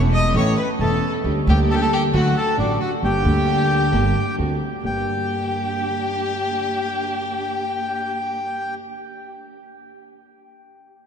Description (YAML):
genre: tango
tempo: 134 BPM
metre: 4/4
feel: rubato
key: G minor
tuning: A4 = 439 Hz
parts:
  - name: bandoneon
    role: melody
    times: 0.0-8.7 s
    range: D4 to Eb6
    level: -24 LUFS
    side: left 1 dB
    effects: none
  - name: dark concert grand piano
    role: accompaniment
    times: 0.0-8.7 s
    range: E1 to A4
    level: -23 LUFS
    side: left 1 dB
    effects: none
  - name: warm studio string section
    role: stabs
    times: 0.0-8.7 s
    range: A3 to G4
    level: -30 LUFS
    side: right 4 dB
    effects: none
  - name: upright bass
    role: bass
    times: 0.0-5.0 s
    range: E1 to D2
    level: -22 LUFS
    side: right 2 dB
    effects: none
  - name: warm violin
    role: second line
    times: 0.1-8.7 s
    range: D4 to Eb5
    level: -27 LUFS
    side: left 2 dB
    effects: none
room: wet cathedral reverb, RT60 6.0 s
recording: in a vast, echoing space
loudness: -18 LUFS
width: side -7 dB against mid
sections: 0.0-4.8 A section; 4.8-8.4 B section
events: none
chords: 0.0 A; 1.2 Gm/D; 2.1 D; 3.0 Gm; 4.4 D7; 4.8 Gm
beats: 0.35 0.80 | 1.25 1.69 2.14 2.58 | 3.02 3.47 3.92 4.38 | 4.84 5.30 5.75 6.20 | 6.64 7.09 7.53 7.99